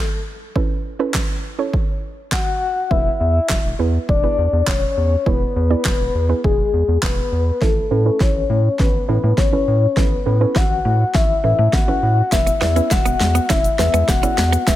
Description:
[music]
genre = dance-pop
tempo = 102 BPM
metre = 4/4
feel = straight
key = A major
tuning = A4 = 440 Hz
[part]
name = soft octave-layered synth lead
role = melody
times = 0.0-14.8 s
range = G#4 to F#5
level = -20 LUFS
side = left 4 dB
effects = chorus, tremolo, low-pass filter, ping-pong delay
[part]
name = soft round pluck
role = accompaniment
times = 0.0-14.8 s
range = B3 to D5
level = -25 LUFS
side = right 7 dB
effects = chorus, sidechain pumping, low-pass filter
[part]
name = impact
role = sound effects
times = 0.0-0.6 s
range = none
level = barely audible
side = none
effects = none
[part]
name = deep house drum kit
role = drums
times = 0.6-14.8 s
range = handclaps, hi-hat, kick drum, shaker, snare drum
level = -20 LUFS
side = equal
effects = none
[part]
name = round analog bass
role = bass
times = 2.9-14.8 s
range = E1 to A2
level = -19 LUFS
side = equal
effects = sidechain pumping
[part]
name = mallet-like synth pluck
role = arpeggios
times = 7.6-14.8 s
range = E3 to E5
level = -30 LUFS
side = left 2 dB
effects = chorus, sidechain pumping, low-pass filter, ping-pong delay
[part]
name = tube shaker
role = percussion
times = 12.3-14.8 s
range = none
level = -34 LUFS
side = left 11 dB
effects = none
[part]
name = direct-recorded clean electric guitar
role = riff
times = 12.5-14.6 s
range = B3 to C#4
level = -25 LUFS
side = right 6 dB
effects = analog chorus, low-pass filter
[sound]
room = digital ambience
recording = none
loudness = -15 LUFS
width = side -13 dB against mid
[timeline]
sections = 0.0-7.6 A section; 7.6-14.8 B section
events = impact 0.0-0.6; build-up 7.6-14.8; drum fill 7.6-14.8; filter sweep 7.6-14.8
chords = 0.0 Aadd9; 2.9 E; 7.6 Aadd9; 12.3 E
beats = | 0.56 1.15 1.73 2.32 | 2.91 3.50 4.09 4.67 | 5.26 5.85 6.44 7.03 | 7.62 8.20 8.79 9.38 | 9.97 10.56 11.15 11.73 | 12.32 12.91 13.50 14.09 | 14.68

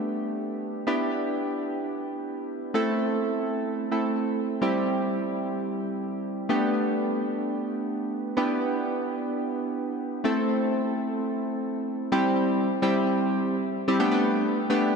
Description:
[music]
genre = pop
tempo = 128 BPM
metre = 4/4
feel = straight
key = A minor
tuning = A4 = 441 Hz
[part]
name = chorused retro synth keys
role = solo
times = 0.0-15.0 s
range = G3 to A4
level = -24 LUFS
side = equal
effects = ping-pong delay
[sound]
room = wet cathedral reverb, RT60 5.3 s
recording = dreamy mix soaked in reverb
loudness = -24 LUFS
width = side -5 dB against mid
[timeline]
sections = 0.0-12.1 A section; 12.1-15.0 B section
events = none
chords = 0.0 Gadd9; 0.9 Em7; 2.7 Am; 4.6 C; 6.5 Gadd9; 8.4 Em7; 10.2 Am; 12.1 C; 14.0 Gadd9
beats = 0.40 | 0.87 1.34 1.81 2.28 | 2.75 3.21 3.68 4.15 | 4.62 5.09 5.56 6.03 | 6.50 6.96 7.43 7.90 | 8.37 8.84 9.31 9.78 | 10.25 10.71 11.18 11.65 | 12.12 12.59 13.06 13.53 | 14.00 14.46 14.93

